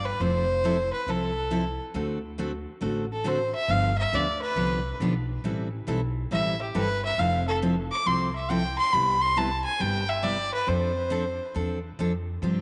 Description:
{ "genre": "country, western swing", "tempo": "138 BPM", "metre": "4/4", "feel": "swing 66% on 8ths", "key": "unclear", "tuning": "A4 = 440 Hz", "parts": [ { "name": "clear fiddle", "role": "melody", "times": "0.0-11.6 s", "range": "G4 to D6", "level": "-29 LUFS", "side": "equal", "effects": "tape echo" }, { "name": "upright bass", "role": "bass", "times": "0.0-12.6 s", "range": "F1 to G2", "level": "-33 LUFS", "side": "equal", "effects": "none" }, { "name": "picked steel-string acoustic guitar", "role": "accompaniment", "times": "0.2-12.6 s", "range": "C3 to A4", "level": "-32 LUFS", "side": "equal", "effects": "none" } ], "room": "moderate spring reverb, RT60 2.4 s", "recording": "nothing above 10.9 kHz", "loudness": "-27 LUFS", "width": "mono", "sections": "0.0-12.6 A section", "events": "fiddle solo 0.0-12.6", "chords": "0.2 Fmaj7; 1.9 D7; 3.7 G7; 5.4 Am9; 7.2 Fmaj7; 8.9 Cmaj7; 10.7 F6" }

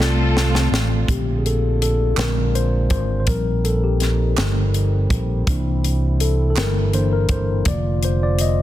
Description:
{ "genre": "slow gospel", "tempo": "55 BPM (dotted quarters)", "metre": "6/8", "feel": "straight", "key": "Bb major", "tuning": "A4 = 440 Hz", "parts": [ { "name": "warm studio string section", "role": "melody", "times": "0.0-1.1 s", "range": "C4 to A4", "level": "-26 LUFS", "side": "equal", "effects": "none" }, { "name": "mellow tine electric piano", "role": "accompaniment", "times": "0.0-8.6 s", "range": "D3 to Eb5", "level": "-23 LUFS", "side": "left 3 dB", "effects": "slow stereo tremolo" }, { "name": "fingered electric bass", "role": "bass", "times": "0.0-8.6 s", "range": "F1 to C2", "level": "-19 LUFS", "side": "equal", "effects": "none" }, { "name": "crisp fusion drum kit", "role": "drums", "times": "0.0-8.6 s", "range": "hi-hat, kick drum, snare drum", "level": "-24 LUFS", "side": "equal", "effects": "none" }, { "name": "mellow French horn section", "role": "sustained chords", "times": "1.1-8.6 s", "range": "D3 to F4", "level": "-32 LUFS", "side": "right 4 dB", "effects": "none" }, { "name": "group handclap", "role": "percussion", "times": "2.2-6.9 s", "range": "none", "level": "-30 LUFS", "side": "right 10 dB", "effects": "none" } ], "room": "studio reverb", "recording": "dense, heavily limited modern master", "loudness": "-17 LUFS", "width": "side -14 dB against mid", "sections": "0.0-1.1 A section; 1.1-8.6 B section", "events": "drum fill 0.0-1.1; tine electric piano solo 1.1-8.6", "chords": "0.0 F; 1.1 Bbmaj7; 2.2 Bb7; 3.3 Eb6/Bb; 5.5 C7; 7.7 Bb/F" }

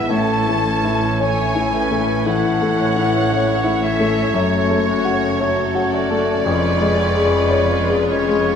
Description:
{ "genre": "classical, romantic movement for piano and orchestra", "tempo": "57 BPM", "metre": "4/4", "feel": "rubato", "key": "A major", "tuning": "A4 = 440 Hz", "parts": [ { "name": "clear grand piano", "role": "melody", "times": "0.0-8.6 s", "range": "E#2 to E5", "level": "-20 LUFS", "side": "left 3 dB", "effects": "none" }, { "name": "rich symphonic violin section", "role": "melody", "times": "0.0-8.6 s", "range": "C#5 to A5", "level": "-26 LUFS", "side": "left 2 dB", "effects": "none" }, { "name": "concert flute", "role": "second line", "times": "0.0-8.5 s", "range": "C#5 to A5", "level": "-26 LUFS", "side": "equal", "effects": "none" }, { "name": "mellow clarinet", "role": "second line", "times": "0.0-8.6 s", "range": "E4 to F#4", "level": "-30 LUFS", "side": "left 2 dB", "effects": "none" }, { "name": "warm oboe", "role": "second line", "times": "0.0-8.6 s", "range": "C#5", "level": "-26 LUFS", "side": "right 2 dB", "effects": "none" }, { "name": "warm symphonic violin section", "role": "second line", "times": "0.0-8.6 s", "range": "A4 to C#5", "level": "-28 LUFS", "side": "equal", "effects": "none" }, { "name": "mellow bassoon", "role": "accompaniment", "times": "0.0-8.6 s", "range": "G#3 to A3", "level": "-28 LUFS", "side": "right 1 dB", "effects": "none" }, { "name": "rich symphonic viola section", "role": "accompaniment", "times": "0.0-8.6 s", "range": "A3 to A4", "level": "-28 LUFS", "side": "right 1 dB", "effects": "none" }, { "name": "mellow French horn section", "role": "sustained chords", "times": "0.0-8.6 s", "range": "E3 to C#4", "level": "-26 LUFS", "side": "left 8 dB", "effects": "none" }, { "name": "rich symphonic cello section", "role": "bass", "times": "0.0-8.6 s", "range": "E#2 to A2", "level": "-26 LUFS", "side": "right 3 dB", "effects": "none" }, { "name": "rich symphonic double bass section", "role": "bass", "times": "0.0-8.6 s", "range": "E#1 to A1", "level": "-28 LUFS", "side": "right 4 dB", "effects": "none" } ], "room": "moderate scoring stage reverb, RT60 2.0 s", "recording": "none", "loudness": "-15 LUFS", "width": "side -7 dB against mid", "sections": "0.0-8.6 A section", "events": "none", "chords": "0.1 A; 4.4 F#m; 6.5 C#/E#" }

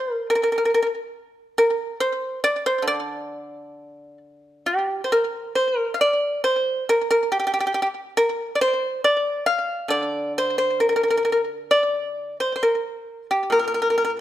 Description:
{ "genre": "chinese traditional, Chinese solo plucked strings", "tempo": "65-72 BPM", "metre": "2/4", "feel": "rubato", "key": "D jue mode", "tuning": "A4 = 438 Hz", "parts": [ { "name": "pipa", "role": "solo", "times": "0.0-14.2 s", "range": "Bb2 to F5", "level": "-20 LUFS", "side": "equal", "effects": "slapback echo" } ], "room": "light reverb", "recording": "close, detailed microphones", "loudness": "-20 LUFS", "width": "side -12 dB against mid", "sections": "0.0-4.6 A section; 4.6-14.2 B section", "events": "none", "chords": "none" }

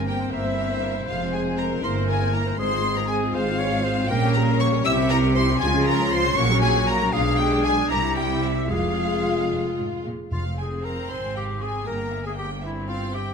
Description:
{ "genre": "quick classical-period movement for symphony orchestra", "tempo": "79 BPM (dotted quarters)", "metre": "6/8", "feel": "straight", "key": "F minor", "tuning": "A4 = 440 Hz", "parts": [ { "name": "bright concert flute", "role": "second line", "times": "0.0-10.1 s", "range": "E5 to E6", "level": "-31 LUFS", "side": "left 2 dB", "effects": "none" }, { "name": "clear clarinet", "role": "second line", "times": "0.0-13.3 s", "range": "E4 to Db5", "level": "-30 LUFS", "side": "left 2 dB", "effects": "none" }, { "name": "rich studio violin section", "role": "second line", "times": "0.0-13.3 s", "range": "E4 to C6", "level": "-31 LUFS", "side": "left 3 dB", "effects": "none" }, { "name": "rich studio viola section", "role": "accompaniment", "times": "0.0-13.3 s", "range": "F3 to C5", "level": "-30 LUFS", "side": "right 2 dB", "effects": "none" }, { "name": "mellow French horn section", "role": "sustained chords", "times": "0.0-10.1 s", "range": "F3 to F4", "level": "-27 LUFS", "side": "left 5 dB", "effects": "none" }, { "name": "clear chamber cello section", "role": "bass", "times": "0.0-13.3 s", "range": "F2 to Db3", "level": "-29 LUFS", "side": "right 4 dB", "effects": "none" }, { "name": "rich studio double bass section", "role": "bass", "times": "0.0-13.3 s", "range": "F1 to Db2", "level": "-28 LUFS", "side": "right 3 dB", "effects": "none" }, { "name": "rich studio violin section", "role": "melody", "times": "0.1-13.3 s", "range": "E5 to E6", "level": "-28 LUFS", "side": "left 1 dB", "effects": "none" }, { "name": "timpani", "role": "percussion", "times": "10.3-11.1 s", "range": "F2", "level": "-31 LUFS", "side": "equal", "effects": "none" } ], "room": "wet recital hall reverb, RT60 1.7 s", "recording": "none", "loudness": "-20 LUFS", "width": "side -6 dB against mid", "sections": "0.0-10.3 A section; 10.3-13.3 A section", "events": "none", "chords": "0.0 C7/G; 1.1 Fm; 1.8 C7/G; 2.6 Fm/Ab; 4.1 Gdim/Bb; 4.9 C; 5.6 Db; 6.4 Gb/Bb; 7.1 G7b9/B; 7.9 C; 8.7 Fm; 11.1 Fm/Ab; 11.9 C7/G" }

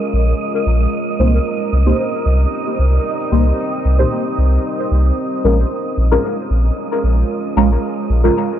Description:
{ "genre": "dub techno", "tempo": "113 BPM", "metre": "4/4", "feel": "straight", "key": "C phrygian", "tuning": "A4 = 440 Hz", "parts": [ { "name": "deep dark ambient pad", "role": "sustained chords", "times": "0.0-8.6 s", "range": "G3 to C5", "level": "-22 LUFS", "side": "right 1 dB", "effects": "chorus, built-in reverb" }, { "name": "wind-like tuned noise texture", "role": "texture", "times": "0.0-8.6 s", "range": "Eb5", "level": "-26 LUFS", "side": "right 5 dB", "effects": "built-in reverb" }, { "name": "pure sine sub bass", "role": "bass", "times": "0.1-8.3 s", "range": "Bb1 to C2", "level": "-14 LUFS", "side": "equal", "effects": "tube saturation" }, { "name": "deep mellow chord stab", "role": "stabs", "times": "1.2-8.3 s", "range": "Ab3 to C5", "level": "-20 LUFS", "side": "equal", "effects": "chorus, phaser, dub echo" } ], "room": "light reverb", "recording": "dry, gritty hardware recording, nothing above 7.6 kHz", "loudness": "-14 LUFS", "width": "side -10 dB against mid", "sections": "0.0-8.6 A section", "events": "none", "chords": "0.0 Bbm7; 0.9 Cm7; 5.2 Bbm7" }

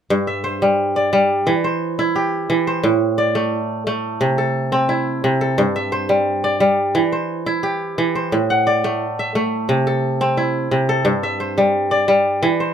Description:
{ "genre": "west african traditional", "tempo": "88 BPM", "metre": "4/4", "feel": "straight", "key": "unclear", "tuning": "A4 = 444 Hz", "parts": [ { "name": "kora", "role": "arpeggios", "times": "0.1-12.7 s", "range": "G2 to F#5", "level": "-16 LUFS", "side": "equal", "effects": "none" } ], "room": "little or no reverb", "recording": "close, detailed microphones", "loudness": "-16 LUFS", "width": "side -8 dB against mid", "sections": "0.1-12.7 A section", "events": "none", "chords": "0.1 G5; 1.5 Em; 2.8 Am; 4.2 C; 5.6 G5; 6.9 Em; 8.3 Am; 9.7 C; 11.1 G5" }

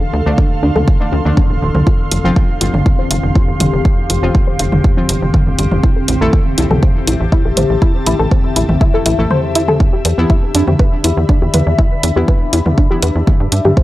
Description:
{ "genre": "melodic techno", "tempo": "121 BPM", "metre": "4/4", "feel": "straight", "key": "E phrygian", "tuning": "A4 = 445 Hz", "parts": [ { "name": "tight sequenced synth", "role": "arpeggios", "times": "0.0-13.8 s", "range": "D4 to F5", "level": "-19 LUFS", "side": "left 1 dB", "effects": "chorus, sidechain pumping, tape echo" }, { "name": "analog drone", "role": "drone", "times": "0.0-13.8 s", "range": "E2 to D3", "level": "-23 LUFS", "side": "equal", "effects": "none" }, { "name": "ethereal airy pad", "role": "texture", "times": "0.0-13.8 s", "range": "C4 to C6", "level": "-21 LUFS", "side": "left 2 dB", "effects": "ensemble chorus, built-in reverb, phaser, sidechain pumping" }, { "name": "tight sequencer bass", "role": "bass", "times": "0.1-13.7 s", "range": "D1 to G2", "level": "-15 LUFS", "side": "equal", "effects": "sidechain pumping" }, { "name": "synth brass stab", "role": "stabs", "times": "0.3-13.0 s", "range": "D3 to A4", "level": "-21 LUFS", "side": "left 1 dB", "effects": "chorus, sidechain pumping, tape echo" }, { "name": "electronic kick drum", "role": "drums", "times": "0.4-13.8 s", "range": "none", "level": "-12 LUFS", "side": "equal", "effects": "none" }, { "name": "punchy analog drum machine", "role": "drums", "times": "0.8-13.7 s", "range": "hi-hat, toms", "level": "-18 LUFS", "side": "equal", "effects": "overdrive" } ], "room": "little or no reverb", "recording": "dry, gritty hardware recording", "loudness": "-11 LUFS", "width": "side -16 dB against mid", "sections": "0.0-13.8 A section", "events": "filter sweep on synth arpeggio sound 0.0-13.8", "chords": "0.0 Dm7; 1.9 Fsus2; 5.8 Am7; 9.8 Em7" }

